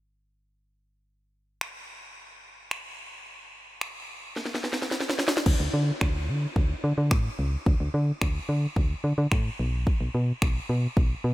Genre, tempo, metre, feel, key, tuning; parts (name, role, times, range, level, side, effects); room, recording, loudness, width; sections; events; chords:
dance-pop; 109 BPM; 4/4; straight; A4 = 437 Hz
house drum kit; drums; 1.6-11.1 s; crash cymbal, finger snaps, kick drum, snare drum; -28 LUFS; equal
solid FM bass; bass; 5.5-11.3 s; B1 to D3; -25 LUFS; equal; sidechain pumping
light reverb, digital ambience; faint mains hum; -24 LUFS; side -18 dB against mid
1.1-5.5 A section; 5.5-11.3 B section
drum fill 4.4-5.5